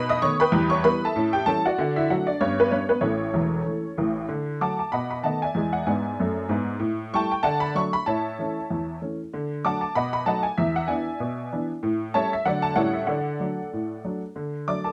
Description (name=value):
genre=jazz, stride piano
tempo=191 BPM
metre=4/4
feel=swing 58% on 8ths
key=D major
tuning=A4 = 440 Hz
part: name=honky-tonk upright piano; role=solo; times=0.0-14.9 s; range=E1 to D#6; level=-25 LUFS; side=equal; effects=none
room=moderate studio reverb, RT60 0.8 s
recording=dark, warm production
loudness=-25 LUFS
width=mono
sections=0.0-4.3 A section; 4.3-14.4 B section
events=none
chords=0.0 B7; 0.5 Em; 1.2 A7; 1.8 D; 2.4 G; 3.0 A; 4.3 D; 4.9 B7; 5.6 E7; 6.8 A5; 7.4 D; 8.1 A; 9.3 D; 10.0 B7; 10.6 E7; 11.8 A7; 12.5 D; 12.8 A7; 13.1 D